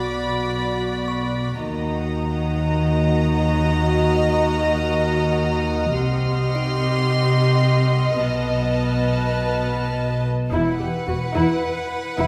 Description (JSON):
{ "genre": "cinematic, suspense film score", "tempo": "54 BPM", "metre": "4/4", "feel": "straight", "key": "unclear", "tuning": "A4 = 438 Hz", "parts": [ { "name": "warm chamber violin section", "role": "melody", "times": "0.0-12.3 s", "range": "F#5 to C6", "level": "-31 LUFS", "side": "equal", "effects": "none" }, { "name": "warm chamber violin section", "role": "second line", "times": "0.0-12.3 s", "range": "B4 to Eb5", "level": "-28 LUFS", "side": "equal", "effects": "none" }, { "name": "dark studio viola section", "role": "accompaniment", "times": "0.0-12.3 s", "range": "E4 to B4", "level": "-29 LUFS", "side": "equal", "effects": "none" }, { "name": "dark chamber cello section", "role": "bass", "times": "0.0-12.3 s", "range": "E2 to Eb3", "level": "-26 LUFS", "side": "equal", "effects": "none" }, { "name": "warm chamber double bass section", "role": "bass", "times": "0.0-12.3 s", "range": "E1 to Eb2", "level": "-26 LUFS", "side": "equal", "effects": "none" }, { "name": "music box", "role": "texture", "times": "0.0-9.9 s", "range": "Eb4 to C#6", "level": "-39 LUFS", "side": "equal", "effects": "none" }, { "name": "warm chamber violin section", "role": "texture", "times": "0.0-9.9 s", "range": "Gb5 to F6", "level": "-38 LUFS", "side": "equal", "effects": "none" } ], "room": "wet scoring stage reverb, RT60 1.9 s", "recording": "recorded in a church or concert hall", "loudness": "-21 LUFS", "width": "mono", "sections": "0.0-10.5 A section; 10.5-12.3 B section", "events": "none", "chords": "0.0 Bm; 1.6 Ebm; 6.0 Cm; 8.2 B7; 10.5 Esus2" }